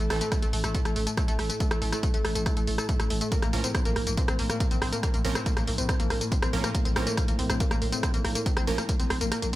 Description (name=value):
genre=driving peak-time techno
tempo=140 BPM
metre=4/4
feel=straight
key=unclear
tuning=A4 = 435 Hz
part: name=analog pluck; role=riff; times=0.0-9.6 s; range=A3 to A4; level=-32 LUFS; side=equal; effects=chorus, overdrive, cassette tape, sidechain pumping, tape echo
part: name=growling 808-style bass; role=bass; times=0.0-9.6 s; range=A1 to Bb1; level=-32 LUFS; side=equal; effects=overdrive, sidechain pumping, low-pass filter
part: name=analog drone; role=drone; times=0.1-9.6 s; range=A2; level=-36 LUFS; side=equal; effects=chorus, sidechain pumping
part: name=punchy analog drum machine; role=drums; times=0.0-9.6 s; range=hi-hat, rim click, tambourine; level=-31 LUFS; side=equal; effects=studio reverb
part: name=supersaw stab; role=stabs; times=0.1-0.2, 3.5-8.8 s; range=E3 to Bb4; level=-36 LUFS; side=right 4 dB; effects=sidechain pumping, tape echo
part: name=electronic kick drum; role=drums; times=0.3-9.0 s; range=none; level=-27 LUFS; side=equal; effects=studio reverb
room=light reverb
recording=none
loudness=-24 LUFS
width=side -16 dB against mid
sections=0.0-9.6 A section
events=kick drops out 9.3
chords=0.0 N.C.; 3.3 Bbm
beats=0.32 0.75 1.18 | 1.60 2.03 2.46 2.89 | 3.32 3.75 4.17 4.60 | 5.03 5.46 5.89 6.32 | 6.75 7.17 7.60 8.03 | 8.46 8.89 9.32